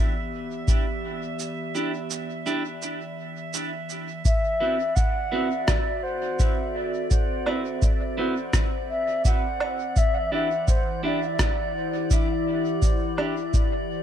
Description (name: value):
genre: ambient dub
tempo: 84 BPM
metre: 4/4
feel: swing 55% on 16ths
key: E minor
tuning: A4 = 440 Hz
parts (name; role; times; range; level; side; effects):
- warbly tape-like pad; sustained chords; 0.0-14.0 s; E3 to D5; -32 LUFS; left 1 dB; chorus, built-in reverb
- drifting glass-harmonics texture; texture; 0.0-14.0 s; D5 to E5; -38 LUFS; equal; chorus, built-in reverb
- electronic cabasa, rim click and woodblock; drums; 0.7-13.7 s; none; -30 LUFS; right 2 dB; overdrive, dub echo
- electronic kick drum; drums; 0.7-13.7 s; none; -23 LUFS; equal; none
- clean electric guitar; stabs; 1.7-13.3 s; C4 to B4; -32 LUFS; right 3 dB; dub echo
- mellow wooden flute; melody; 4.2-12.4 s; C5 to F#5; -28 LUFS; equal; dub echo
room: light reverb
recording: none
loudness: -22 LUFS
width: side -10 dB against mid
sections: 0.0-14.0 A section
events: break 1.4-4.3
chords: 0.0 Em7; 4.3 D9/E; 10.0 Em7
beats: 0.68 | 1.40 2.11 2.82 3.54 | 4.25 4.97 5.68 6.40 | 7.11 7.82 8.54 9.25 | 9.97 10.68 11.40 12.11 | 12.82 13.54